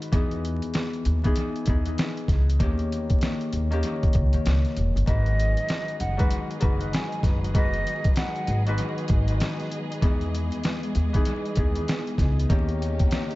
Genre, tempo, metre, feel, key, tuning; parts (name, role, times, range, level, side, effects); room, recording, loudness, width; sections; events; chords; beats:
hip hop, boom-bap hip-hop; 97 BPM; 4/4; swing 61% on 16ths; G# minor; A4 = 440 Hz
Celtic harp; accompaniment; 0.0-13.4 s; G#2 to B4; -30 LUFS; left 2 dB; cassette tape, high-pass filter, low-pass filter, analog delay
boom bap sampler-style drum kit; drums; 0.0-13.4 s; hi-hat, kick drum, snare drum; -25 LUFS; equal; analog delay
upright bass; bass; 0.1-13.1 s; E1 to E2; -25 LUFS; equal
breathy mellow silver concert flute; melody; 5.1-8.9 s; D#5 to G#5; -32 LUFS; right 2 dB; high-pass filter, low-pass filter, analog delay
warm studio string section; sustained chords; 5.1-13.4 s; C#3 to D#5; -36 LUFS; right 1 dB; high-pass filter, low-pass filter
small room ambience; echo-heavy mix, vinyl crackle, nothing above 7.7 kHz; -22 LUFS; side -19 dB against mid
0.0-13.4 A section
0.1 Emaj7; 2.6 D#7; 5.1 G#m7; 10.0 Emaj7; 12.5 D#7
| 0.13 0.75 1.37 1.99 | 2.60 3.22 3.84 4.46 | 5.08 5.70 6.32 6.93 | 7.55 8.17 8.79 9.41 | 10.03 10.64 11.26 11.88 | 12.50 13.12